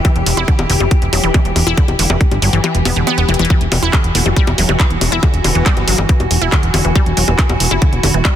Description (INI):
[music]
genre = psychedelic trance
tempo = 139 BPM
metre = 4/4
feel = straight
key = E minor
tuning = A4 = 441 Hz
[part]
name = evolving wavetable pad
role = sustained chords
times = 0.0-8.4 s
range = E3 to G4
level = -21 LUFS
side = left 1 dB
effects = chorus, built-in reverb, sidechain pumping
[part]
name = wide unison pluck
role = riff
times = 0.0-8.3 s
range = D3 to E4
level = -19 LUFS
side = moving between left 4 dB and right 4 dB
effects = auto-pan, sidechain pumping, tape echo
[part]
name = electronic kick drum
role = drums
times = 0.0-8.3 s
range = none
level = -13 LUFS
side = equal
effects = small room ambience
[part]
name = garage drum kit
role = drums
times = 0.0-8.3 s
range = bongos, handclaps, hi-hat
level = -19 LUFS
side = left 2 dB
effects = small room ambience
[part]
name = plucky analog bass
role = bass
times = 0.2-8.2 s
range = E1 to G1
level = -16 LUFS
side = equal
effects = none
[part]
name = formant-sweep wobble bass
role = second line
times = 3.7-6.0 s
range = A3 to D4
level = -29 LUFS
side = left 5 dB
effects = none
[sound]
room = light reverb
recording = dense, heavily limited modern master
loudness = -11 LUFS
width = side -10 dB against mid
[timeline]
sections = 0.0-8.4 A section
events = kick drops out 2.6-3.5; drum fill 3.3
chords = 0.0 E5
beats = | 0.05 0.48 0.91 1.34 | 1.77 2.21 2.64 3.07 | 3.50 3.93 4.37 4.80 | 5.23 5.66 6.09 6.52 | 6.96 7.39 7.82 8.25